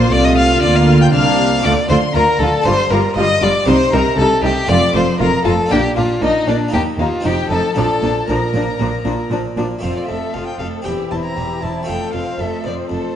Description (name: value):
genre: classical, baroque-style concerto movement with solo episodes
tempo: 117 BPM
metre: 4/4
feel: straight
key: Bb major, F major from 9.8 s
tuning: A4 = 442 Hz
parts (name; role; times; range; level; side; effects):
- warm studio violin section; melody; 0.0-13.2 s; C5 to G6; -23 LUFS; left 3 dB; none
- warm violin; melody; 0.0-13.2 s; D4 to Bb5; -19 LUFS; left 2 dB; none
- rich chamber violin section; second line; 0.0-13.1 s; D4 to C5; -22 LUFS; left 2 dB; none
- harpsichord; accompaniment; 0.0-13.2 s; Eb2 to G4; -25 LUFS; equal; none
- rich chamber viola section; accompaniment; 0.0-13.2 s; F3 to E4; -23 LUFS; right 1 dB; none
- dark chamber cello section; bass; 0.0-13.0 s; Eb2 to D3; -21 LUFS; right 2 dB; none
- rich chamber double bass section; bass; 0.0-13.0 s; E1 to Eb2; -22 LUFS; right 2 dB; none
room: wet recital hall reverb, RT60 1.6 s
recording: dark, warm production, nothing above 10.9 kHz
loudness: -13 LUFS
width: side -10 dB against mid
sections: 0.0-9.8 A section; 9.8-13.2 B section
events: none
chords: 0.0 Bb; 1.6 Dm; 2.7 G5; 3.7 Cm; 4.7 F; 5.7 Bb; 6.7 Eb5; 7.3 F7; 7.8 Bb; 9.8 F; 10.9 C/E; 11.9 F